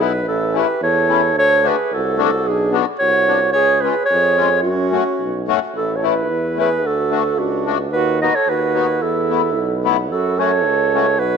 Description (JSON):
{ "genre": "alpine folk, alpine dance band", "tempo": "110 BPM", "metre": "2/4", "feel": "straight", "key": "F# minor, A major from 5.7 s", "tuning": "A4 = 439 Hz", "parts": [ { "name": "dark clarinet", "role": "melody", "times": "0.0-11.4 s", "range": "F#4 to D#5", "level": "-17 LUFS", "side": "right 1 dB", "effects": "slapback echo" }, { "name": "accordion", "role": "accompaniment", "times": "0.0-11.1 s", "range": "G#3 to F#4", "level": "-22 LUFS", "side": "left 12 dB", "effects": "light tremolo tuning" }, { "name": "clear tuba", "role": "bass", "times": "0.0-11.4 s", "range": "A1 to F#2", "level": "-23 LUFS", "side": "right 1 dB", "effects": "none" }, { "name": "dark trumpet", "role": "second line", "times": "0.3-11.4 s", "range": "C#4 to B4", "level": "-23 LUFS", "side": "right 13 dB", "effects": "none" } ], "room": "moderate plate reverb, RT60 2.9 s", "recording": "1960s-style stereo with parts hard left and right", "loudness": "-15 LUFS", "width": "side -6 dB against mid", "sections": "0.0-5.7 A section; 5.7-11.4 B section", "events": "none", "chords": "0.3 A; 1.4 D; 2.5 Bm; 3.5 C#; 4.6 F#m; 5.7 A; 6.8 D; 7.9 B/D#; 9.0 Esus4; 10.1 F#m" }